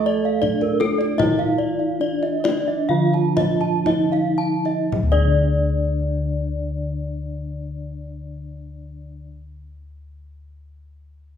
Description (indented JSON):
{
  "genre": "Balinese gamelan",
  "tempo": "54-85 BPM",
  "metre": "4/4",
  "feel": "straight",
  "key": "unclear",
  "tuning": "A4 = 438 Hz",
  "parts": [
    { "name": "gamelan-type bronze metallophone", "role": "melody", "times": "0.0-9.3 s", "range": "D4 to A4", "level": "-25 LUFS", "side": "right 1 dB", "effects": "none" },
    { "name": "gamelan-type bronze metallophone", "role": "accompaniment", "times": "0.0-9.3 s", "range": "D3 to A3", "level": "-27 LUFS", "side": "right 1 dB", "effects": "none" },
    { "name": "gamelan-type bronze metallophone", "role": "arpeggios", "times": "0.0-9.3 s", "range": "Bb4 to A5", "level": "-28 LUFS", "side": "right 5 dB", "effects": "none" },
    { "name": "gamelan-type bossed gongs", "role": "bass", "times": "0.0-9.2 s", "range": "D2 to F4", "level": "-26 LUFS", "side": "left 2 dB", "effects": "none" },
    { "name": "vibraphone with soft mallets", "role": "second line", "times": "0.1-4.2 s", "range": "D4 to A4", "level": "-28 LUFS", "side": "right 5 dB", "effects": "none" },
    { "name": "gamelan-type bronze metallophone", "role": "arpeggios", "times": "0.1-9.3 s", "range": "A4 to A5", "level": "-26 LUFS", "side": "left 5 dB", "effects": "none" },
    { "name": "kendang", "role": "percussion", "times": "0.4-5.4 s", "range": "none", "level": "-28 LUFS", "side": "left 3 dB", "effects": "none" }
  ],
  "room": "wet recital hall reverb, RT60 1.4 s",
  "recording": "recorded in a church or concert hall",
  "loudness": "-18 LUFS",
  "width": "side -8 dB against mid",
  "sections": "0.0-4.9 A section; 4.9-9.4 B section",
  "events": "slowing down 0.0-4.9",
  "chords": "none"
}